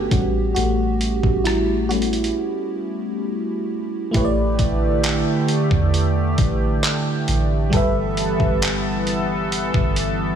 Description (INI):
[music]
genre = contemporary R&B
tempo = 67 BPM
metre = 4/4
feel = straight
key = unclear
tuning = A4 = 443 Hz
[part]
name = FM electric piano with soft pad layer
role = accompaniment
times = 0.0-10.4 s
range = G3 to E5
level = -22 LUFS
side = equal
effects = chorus
[part]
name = soft 808-style bass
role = bass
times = 0.0-10.4 s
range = G1 to E2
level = -23 LUFS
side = right 1 dB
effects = none
[part]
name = dusty soul sampler-style drum kit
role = drums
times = 0.1-10.2 s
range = handclaps, hi-hat, kick drum, rim click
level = -23 LUFS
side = equal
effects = overdrive
[part]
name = chorused pulse-width pad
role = sustained chords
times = 4.4-10.4 s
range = D3 to A4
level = -23 LUFS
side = right 1 dB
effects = sidechain pumping
[sound]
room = light reverb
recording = studio reverb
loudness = -18 LUFS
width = side -8 dB against mid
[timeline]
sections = 0.0-4.1 A section; 4.1-10.4 B section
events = FM electric piano solo 0.0-4.1; break 2.4-4.1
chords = 0.1 A13; 4.1 A7sus4; 7.7 G69